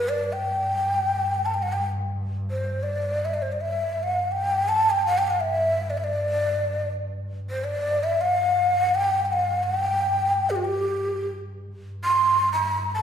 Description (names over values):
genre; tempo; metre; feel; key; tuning
Arabic maqam ensemble; free time; none; none; G maqam rast; A4 = 440 Hz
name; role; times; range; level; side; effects
breathy mellow ney; melody; 0.0-13.0 s; F#4-50c to C6; -22 LUFS; equal; none
warm double bass; drone; 0.0-13.0 s; G2; -32 LUFS; equal; none
room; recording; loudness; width
wet recital hall reverb, RT60 1.4 s; recorded in a church or concert hall; -22 LUFS; side -8 dB against mid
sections
0.0-11.8 A section; 11.8-13.0 A section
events
none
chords
none